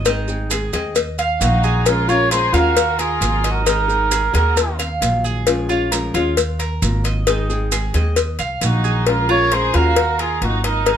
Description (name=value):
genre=latin, Cuban son and guajira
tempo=133 BPM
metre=4/4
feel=straight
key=unclear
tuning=A4 = 441 Hz
part: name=nylon-string guitar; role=accompaniment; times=0.0-11.0 s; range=Eb3 to Ab4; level=-23 LUFS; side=left 3 dB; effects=none
part: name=Cuban tres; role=arpeggios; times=0.0-11.0 s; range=Eb4 to F5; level=-24 LUFS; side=right 4 dB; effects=none
part: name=upright bass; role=bass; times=0.0-11.0 s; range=Ab1 to Eb2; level=-20 LUFS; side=right 1 dB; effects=none
part: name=cowbell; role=percussion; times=0.1-11.0 s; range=none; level=-21 LUFS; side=left 6 dB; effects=none
part: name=maracas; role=percussion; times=0.1-9.1 s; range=none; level=-26 LUFS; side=right 10 dB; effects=none
part: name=trumpet with cup mute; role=melody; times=1.4-4.8, 8.6-11.0 s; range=Gb4 to Db5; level=-20 LUFS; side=right 3 dB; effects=none
part: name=warm studio violin section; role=second line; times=1.4-4.8, 8.6-11.0 s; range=Eb4 to Bb4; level=-26 LUFS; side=left 1 dB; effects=none
room=light reverb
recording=none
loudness=-15 LUFS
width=side -9 dB against mid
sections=0.0-9.1 A section; 9.1-11.0 A section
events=none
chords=0.1 Ab; 1.0 Ebmadd9; 1.9 Bbm7; 2.8 Ebmadd9; 3.7 Abadd9; 4.6 Ebmadd9; 5.5 Bbm7; 6.4 Ebmadd9; 7.3 Ab; 8.2 Ebmadd9; 9.1 Bbm7; 10.0 Ebmadd9